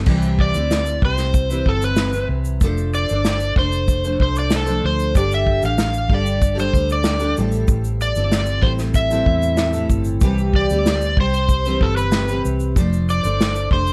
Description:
acoustic pop; 95 BPM; 4/4; straight; C major; A4 = 440 Hz
picked steel-string acoustic guitar; accompaniment; 0.0-13.9 s; A2 to C5; -26 LUFS; equal; double-tracked
vintage muted fingered electric bass; bass; 0.0-13.9 s; F1 to E2; -24 LUFS; equal
unplugged drum kit; drums; 0.1-13.9 s; crash cymbal, kick drum, shaker, snare drum; -22 LUFS; equal
overdriven slide guitar; melody; 0.4-13.9 s; A4 to F5; -24 LUFS; equal
light reverb; dark, warm production; -19 LUFS; mono
0.1-13.9 A section
0.1 Cmaj7; 2.6 F6; 5.1 Gsus2; 7.4 Am7; 10.2 Cmaj7; 12.8 F6

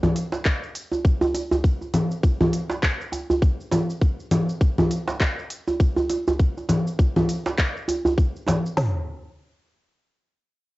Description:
downtempo; 101 BPM; 4/4; swing 58% on 16ths
organic electronic drum kit; drums; 0.0-8.8 s; congas, handclaps, hi-hat, shaker; -23 LUFS; left 1 dB; cassette tape
djembe; percussion; 0.0-8.6 s; -24 LUFS; right 2 dB
organic electronic drum kit; drums; 0.5-8.9 s; hi-hat, kick drum, snare drum, toms; -20 LUFS; equal; cassette tape
light reverb; home recording on cassette, nothing above 7.9 kHz; -20 LUFS; side -19 dB against mid
0.0-8.8 A section; 8.8-10.8 B section

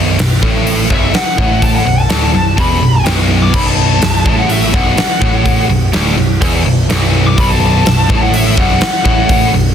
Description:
hard rock; 125 BPM; 4/4; straight; B minor; A4 = 440 Hz
high-gain distorted guitar; riff; 0.0-9.7 s; B1 to A2; -17 LUFS; left 8 dB; distortion
tight distorted guitar; riff; 0.0-9.7 s; B1 to A2; -17 LUFS; right 8 dB; distortion
picked electric bass; bass; 0.0-9.7 s; B0 to A1; -16 LUFS; equal
huge arena drum kit; drums; 0.2-9.4 s; crash cymbal, hi-hat, kick drum, snare drum; -14 LUFS; equal
bluesy overdriven lead guitar; melody; 0.9-9.5 s; E5 to D6; -17 LUFS; left 3 dB; distortion
studio reverb; dense, heavily limited modern master; -9 LUFS; side -8 dB against mid
0.0-9.7 A section
lead electric guitar solo 0.0-9.7
0.0 Bm

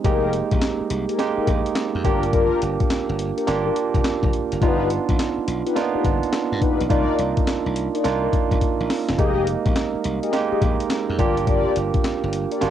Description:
R&B, new jack swing; 105 BPM; 4/4; swing 65% on 16ths; F dorian; A4 = 437 Hz
barky tine electric piano; accompaniment; 0.0-12.7 s; Ab3 to G4; -22 LUFS; right 7 dB; cassette tape
mellow synth brass; stabs; 0.0-12.6 s; D4 to Eb5; -25 LUFS; left 10 dB; chorus, cassette tape
glassy slap bass; bass; 0.0-12.7 s; E1 to G2; -27 LUFS; left 2 dB
breakbeat sampler-style drum kit; drums; 0.0-12.7 s; handclaps, hi-hat, kick drum, snare drum; -23 LUFS; left 2 dB; cassette tape
moderate booth ambience, RT60 0.2 s; home recording on cassette; -19 LUFS; side -10 dB against mid
0.0-12.7 A section
drum fill 8.6-9.2
0.0 Fm11; 2.0 Gm7; 4.6 G7b13; 6.9 Cm11; 9.2 Fm11; 11.2 Gm7

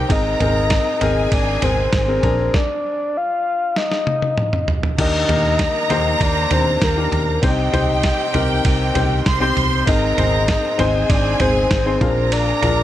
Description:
piano-driven pop; 98 BPM; 4/4; straight; Eb major; A4 = 439 Hz
warm studio violin section; second line; 0.0-12.8 s; G4 to C6; -24 LUFS; right 1 dB; digital delay
warm upright piano; accompaniment; 0.0-12.8 s; Ab2 to C5; -22 LUFS; left 4 dB
vintage muted fingered electric bass; bass; 0.0-12.8 s; Ab1 to Eb2; -21 LUFS; equal
soft octave-layered synth lead; melody; 0.1-12.8 s; Bb4 to F5; -21 LUFS; left 1 dB; chorus
lo-fi sampler-style drum kit; drums; 0.1-12.8 s; crash cymbal, kick drum, ride cymbal, snare drum, toms; -21 LUFS; right 1 dB
light reverb, digital ambience; -15 LUFS; side -12 dB against mid
0.0-5.0 A section; 5.0-12.8 A section
stop 2.5-5.0; drum fill 3.8-5.0
0.1 Abadd9; 2.2 Bb7; 3.8 N.C.; 5.0 Ebmaj7; 7.4 Cm; 9.9 Abadd9; 12.0 Bb7

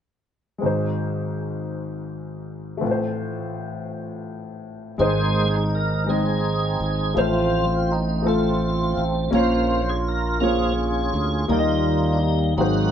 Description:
gospel; 55 BPM (dotted quarters); 6/8; straight; Ab major; A4 = 440 Hz
warm upright piano; accompaniment; 0.6-12.9 s; Ab1 to Eb5; -24 LUFS; left 2 dB
tonewheel organ; sustained chords; 5.0-12.9 s; Eb3 to C5; -23 LUFS; right 1 dB; fast rotary speaker, chorus vibrato
modern bright fingered electric bass; bass; 5.0-12.9 s; Ab1 to Eb2; -24 LUFS; right 1 dB
moderate studio reverb, RT60 0.6 s; band playing live in one room, nothing above 10.9 kHz; -20 LUFS; side -9 dB against mid
0.6-5.0 A section; 5.0-12.9 B section
tonewheel organ solo 5.0-12.9
0.6 Ab; 2.8 F/A; 5.0 Ab; 7.2 F/A; 9.3 Bbm; 11.5 Eb

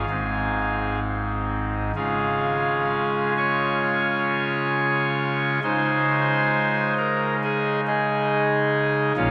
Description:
classical, chorale-style piece for pipe organ; 61-69 BPM; 4/4; rubato; A4 = 440 Hz
pipe organ, soft reed; solo; 0.0-9.3 s; Ab1 to Db6; -23 LUFS; equal
wet cathedral reverb, RT60 6.1 s; -23 LUFS; mono
0.0-9.3 A section
0.1 Ab; 2.0 Db; 5.6 Ab/Db

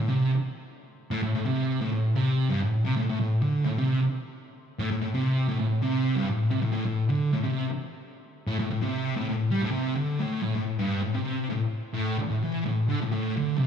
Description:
rock; 130 BPM; 4/4; straight; A4 = 440 Hz
thick fuzz guitar; solo; 0.0-13.7 s; G2 to G3; -25 LUFS; equal; distortion, slapback echo
light reverb; live gig heard through the venue's PA, club reverb; -25 LUFS; side -8 dB against mid
0.0-10.4 A section; 10.4-13.7 B section

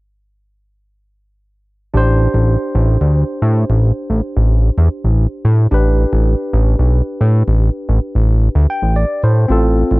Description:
progressive instrumental, progressive; 111 BPM; 7/4; straight; A minor; A4 = 440 Hz
barky tine electric piano; accompaniment; 1.9-10.0 s; C4 to G5; -20 LUFS; equal; medium stereo tremolo
fat analog bass; bass; 1.9-10.0 s; A1 to A2; -12 LUFS; equal
little or no reverb; dark, warm production; -12 LUFS; side -23 dB against mid
1.9-10.0 A section
tine electric piano fill 8.4-9.5
1.9 Am; 5.7 G/A

